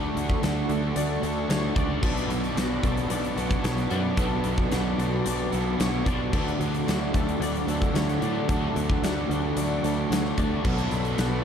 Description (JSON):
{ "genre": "rock, shoegaze and dream pop", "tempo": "112 BPM", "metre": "4/4", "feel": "straight", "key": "D major", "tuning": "A4 = 440 Hz", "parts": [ { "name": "warm analog pad", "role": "sustained chords", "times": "0.0-11.4 s", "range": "A4 to D6", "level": "-37 LUFS", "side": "left 1 dB", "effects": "chorus" }, { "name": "twangy electric guitar", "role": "arpeggios", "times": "0.0-11.4 s", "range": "F#4 to D5", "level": "-36 LUFS", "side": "left 8 dB", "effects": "ensemble chorus, analog delay" }, { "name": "crunchy overdriven guitar", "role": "riff", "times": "0.0-11.4 s", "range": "B2 to D4", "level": "-30 LUFS", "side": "equal", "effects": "harmonic tremolo" }, { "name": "overdriven semi-hollow guitar", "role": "riff", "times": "0.0-11.4 s", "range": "B2 to F#4", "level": "-33 LUFS", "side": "left 9 dB", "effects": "lush chorus" }, { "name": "overdriven semi-hollow guitar", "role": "riff", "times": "0.0-11.4 s", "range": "B2 to F#4", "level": "-32 LUFS", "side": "right 11 dB", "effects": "reverse reverb" }, { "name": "picked electric bass", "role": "bass", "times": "0.0-11.4 s", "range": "B1 to A2", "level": "-30 LUFS", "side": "equal", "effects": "none" }, { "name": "huge arena drum kit", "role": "drums", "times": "0.2-11.3 s", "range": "crash cymbal, hi-hat, kick drum, snare drum", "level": "-29 LUFS", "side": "equal", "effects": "none" } ], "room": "small room ambience", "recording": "dark, warm production", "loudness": "-23 LUFS", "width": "side -8 dB against mid", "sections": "0.0-11.4 A section", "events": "none", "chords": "0.0 D; 2.0 Bm7; 6.3 D; 10.6 Bm7", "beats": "0.43 0.96 1.50 | 2.04 2.57 3.11 3.65 | 4.18 4.72 5.26 5.80 | 6.33 6.87 7.41 7.95 | 8.49 9.02 9.56 10.10 | 10.64 11.17" }